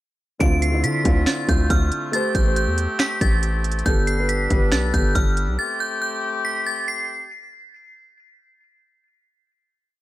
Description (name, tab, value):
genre	hip hop, trap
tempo	139 BPM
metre	4/4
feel	half-time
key	A minor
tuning	A4 = 436 Hz
part	metallic FM bell	melody	0.4-7.1 s	F6 to D7	-25 LUFS	equal	chorus, tape echo
part	dark grand piano	accompaniment	0.4-5.6 s	D3 to C5	-26 LUFS	right 1 dB	none
part	warm woodwind section	sustained chords	0.4-7.3 s	D3 to B4	-31 LUFS	left 2 dB	none
part	hard-hitting 808-style bass	bass	0.4-5.6 s	G1 to D3	-22 LUFS	equal	none
part	trap drum kit	drums	0.4-5.5 s	finger snaps, hi-hat, kick drum, snare drum	-21 LUFS	equal	none
room	little or no reverb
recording	none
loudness	-18 LUFS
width	side -16 dB against mid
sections	0.4-7.3 hook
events	none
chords	0.4 Dm7; 2.1 Am7; 3.9 Gadd9; 5.6 Am7